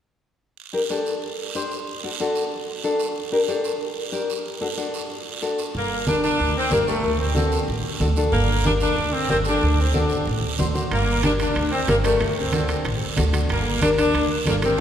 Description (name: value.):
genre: latin, cumbia.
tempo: 186 BPM.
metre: 4/4.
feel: straight.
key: G harmonic minor.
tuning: A4 = 443 Hz.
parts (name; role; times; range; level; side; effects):
guiro; percussion; 0.6-14.8 s; none; -32 LUFS; right 6 dB; none.
nylon-string guitar; accompaniment; 0.7-14.8 s; D4 to C5; -24 LUFS; left 2 dB; none.
upright bass; bass; 5.7-14.7 s; G1 to D2; -24 LUFS; right 1 dB; none.
congas; percussion; 5.7-14.6 s; none; -28 LUFS; right 1 dB; none.
clear saxophone section; melody; 5.8-14.8 s; A3 to D4; -24 LUFS; equal; none.
timbales; percussion; 10.9-14.8 s; none; -32 LUFS; right 4 dB; none.
room: wet cathedral reverb, RT60 4.3 s.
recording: recorded in a church or concert hall.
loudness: -20 LUFS.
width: side -9 dB against mid.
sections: 0.6-5.7 A section; 5.7-14.8 B section.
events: none.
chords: 0.6 G5; 1.9 D; 3.2 Gm; 4.5 D; 5.7 Gm; 7.0 D7; 8.3 Gm; 9.6 D7; 10.9 Gm; 12.2 D7; 13.5 Gm.